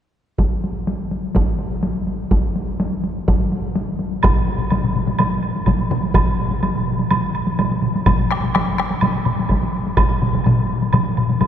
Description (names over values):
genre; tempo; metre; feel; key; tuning
japanese traditional, taiko drum ensemble; 125 BPM; 4/4; straight; none; none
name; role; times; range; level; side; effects
solo taiko drums; percussion; 0.4-11.5 s; none; -22 LUFS; equal; none
solo taiko drums; percussion; 0.4-10.1 s; none; -22 LUFS; equal; none
taiko ensemble; percussion; 4.2-11.5 s; none; -22 LUFS; left 3 dB; none
woodblock; percussion; 4.2-11.5 s; none; -25 LUFS; right 3 dB; none
taiko ensemble; percussion; 6.2-11.5 s; none; -24 LUFS; right 2 dB; none
room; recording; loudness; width
wet cathedral reverb, RT60 5.7 s; recorded in a church or concert hall; -17 LUFS; side -9 dB against mid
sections
0.4-4.2 A section; 4.2-11.5 B section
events
none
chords
none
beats
| 0.40 0.88 1.36 1.83 | 2.31 2.79 3.27 3.75 | 4.23 4.71 5.19 5.67 | 6.15 6.63 7.11 7.59 | 8.06 8.54 9.02 9.50 | 9.98 10.45 10.93 11.41